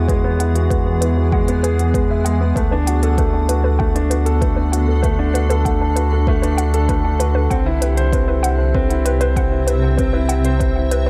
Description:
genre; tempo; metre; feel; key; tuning
piano and strings electronica; 97 BPM; 4/4; straight; unclear; A4 = 440 Hz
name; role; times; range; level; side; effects
granular cloud pad; sustained chords; 0.0-11.1 s; C3 to G5; -28 LUFS; equal; built-in reverb, sidechain pumping
warm concert grand piano; riff; 0.0-11.1 s; G#3 to E5; -23 LUFS; equal; low-pass filter, delay
warm sub bass; bass; 0.0-11.1 s; C2 to E2; -20 LUFS; equal; sidechain pumping
warbly dusty pluck; arpeggios; 0.1-11.1 s; B4 to F#5; -29 LUFS; equal; chorus, sidechain pumping, delay
electronic hi-hat; drums; 0.1-11.0 s; none; -31 LUFS; equal; none
electronic kick drum; drums; 0.1-10.7 s; none; -23 LUFS; equal; none
room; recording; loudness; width
little or no reverb; none; -17 LUFS; mono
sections
0.0-11.1 A section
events
none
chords
0.0 Eadd9; 2.6 D; 7.5 C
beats
| 0.09 0.71 1.33 1.95 | 2.57 3.19 3.81 4.42 | 5.04 5.66 6.28 6.90 | 7.52 8.13 8.75 9.37 | 9.99 10.61

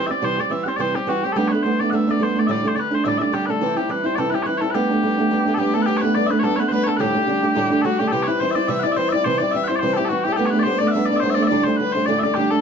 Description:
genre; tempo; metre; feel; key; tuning
celtic folk, Celtic reel; 213 BPM; 4/4; swing 55% on 8ths; G major; A4 = 440 Hz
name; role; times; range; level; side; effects
mellow small bagpipes; melody; 0.0-12.6 s; F#4 to F#5; -22 LUFS; left 1 dB; plate reverb
picked old ladder-braced acoustic guitar; accompaniment; 0.0-12.6 s; D2 to G4; -20 LUFS; right 2 dB; none
rich fiddle; second line; 5.6-12.6 s; F#4 to E5; -25 LUFS; left 9 dB; none
room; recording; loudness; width
wet booth ambience, RT60 0.2 s; dark, warm production, nothing above 7.6 kHz; -17 LUFS; side -6 dB against mid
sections
0.0-5.9 A section; 5.9-12.6 A section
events
none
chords
0.0 C; 1.4 Gadd9; 2.5 Dsus4; 3.6 C; 4.7 Gadd9; 7.0 Dsus4; 8.1 C; 10.4 Gadd9; 11.5 Dsus4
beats
| 0.23 0.51 0.80 1.08 | 1.36 1.64 1.92 2.21 | 2.49 2.77 3.05 3.33 | 3.62 3.90 4.18 4.46 | 4.74 5.03 5.31 5.59 | 5.87 6.15 6.43 6.72 | 7.00 7.28 7.56 7.84 | 8.13 8.41 8.69 8.97 | 9.26 9.54 9.82 10.10 | 10.39 10.67 10.95 11.23 | 11.52 11.80 12.08 12.36

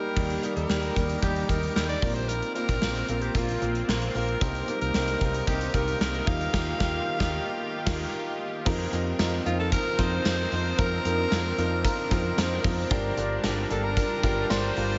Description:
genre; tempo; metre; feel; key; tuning
1980s-style pop; 113 BPM; 4/4; straight; unclear; A4 = 440 Hz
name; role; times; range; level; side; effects
raspy alto saxophone; melody; 0.0-15.0 s; F4 to F5; -34 LUFS; equal; diffuse ambient delay
clear concert grand piano; accompaniment; 0.0-15.0 s; G3 to Bb4; -33 LUFS; equal; none
sweeping resonant pad; sustained chords; 0.2-15.0 s; C3 to Bb4; -38 LUFS; equal; chorus
woody fretless electric bass; bass; 0.2-15.0 s; G1 to F2; -33 LUFS; equal; none
gated 80s drum kit; drums; 0.2-14.9 s; crash cymbal, hi-hat, kick drum, snare drum, tambourine; -32 LUFS; equal; none
soft synth bell; second line; 9.5-15.0 s; F5 to C6; -43 LUFS; equal; none
room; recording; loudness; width
wet huge ambient reverb, RT60 7.9 s; dreamy mix soaked in reverb, nothing above 7.7 kHz; -27 LUFS; mono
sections
0.2-8.7 A section; 8.7-15.0 B section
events
break 0.0; band accent 6.5-8.7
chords
0.2 Eb; 2.0 Bbsus2; 4.4 Cm7; 6.3 Ebadd9; 8.7 F7sus4; 12.9 Gm7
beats
| 0.17 0.70 1.23 1.76 | 2.29 2.82 3.35 3.88 | 4.41 4.95 5.48 6.01 | 6.54 7.07 7.60 8.13 | 8.66 9.19 9.72 10.26 | 10.79 11.32 11.85 12.38 | 12.91 13.44 13.97 14.50

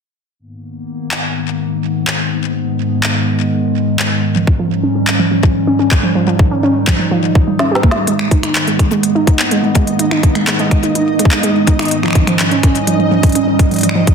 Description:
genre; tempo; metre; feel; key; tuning
IDM; 125 BPM; 4/4; straight; Ab melodic minor; A4 = 440 Hz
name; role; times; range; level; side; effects
warbly tape-like pad; sustained chords; 0.6-14.1 s; Ab2 to Eb4; -17 LUFS; equal; chorus, built-in reverb
organic electronic drum kit; drums; 1.1-14.1 s; finger snaps, handclaps, hi-hat, snare drum; -18 LUFS; left 1 dB; ping-pong delay
warbly dusty pluck; arpeggios; 4.4-14.1 s; F3 to G4; -16 LUFS; right 2 dB; chorus, ping-pong delay
electronic kick drum; drums; 4.5-14.1 s; none; -12 LUFS; left 1 dB; none
flickering grainy texture; texture; 9.0-14.1 s; Eb4 to Eb5; -21 LUFS; equal; built-in reverb
room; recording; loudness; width
moderate digital room reverb, RT60 1.1 s, digital ambience; dense, heavily limited modern master; -11 LUFS; side -6 dB against mid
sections
0.4-8.1 A section; 8.1-14.1 B section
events
drum fill 7.6-8.1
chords
0.4 Abmadd9; 4.2 Eb9/Ab; 8.1 Abmadd9; 11.9 Eb9/Ab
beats
| 0.39 0.87 1.35 1.83 | 2.31 2.79 3.27 3.75 | 4.23 4.71 5.19 5.67 | 6.15 6.63 7.11 7.59 | 8.07 8.55 9.03 9.51 | 9.99 10.47 10.95 11.43 | 11.91 12.39 12.87 13.35 | 13.83

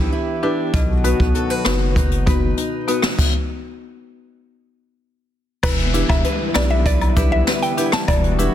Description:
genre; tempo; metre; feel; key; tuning
dancehall; 98 BPM; 4/4; straight; E minor; A4 = 440 Hz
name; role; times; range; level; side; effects
warm analog pad; sustained chords; 0.0-8.5 s; D3 to G4; -28 LUFS; equal; chorus, sidechain pumping
fingerpicked steel-string acoustic guitar; arpeggios; 0.0-8.5 s; B2 to B4; -26 LUFS; left 1 dB; ping-pong delay
saturated sub bass; bass; 0.0-8.5 s; E1 to B1; -20 LUFS; equal; none
buzzing marimba with medium mallets; accompaniment; 0.4-8.5 s; B3 to B4; -24 LUFS; left 2 dB; none
jazz brush drum kit; drums; 0.7-8.5 s; crash cymbal, hi-hat, kick drum, rim click, snare drum; -19 LUFS; equal; soft clipping on snare
mallet-like synth pluck; melody; 5.6-8.3 s; B4 to A5; -24 LUFS; equal; chorus, ping-pong delay
woodblock and cabasa; percussion; 5.6-8.5 s; none; -30 LUFS; left 4 dB; none
downlifter; sound effects; 5.6-8.5 s; none; -29 LUFS; equal; none
room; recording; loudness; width
studio reverb; dense, heavily limited modern master; -16 LUFS; side -11 dB against mid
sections
0.0-5.6 A section; 5.6-8.5 B section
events
stop 3.2-5.6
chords
0.0 Em7; 0.7 B; 3.2 N.C.; 5.6 Em7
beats
0.12 | 0.74 1.35 1.96 2.57 | 3.19 3.80 4.41 5.02 | 5.63 6.25 6.86 7.47 | 8.08

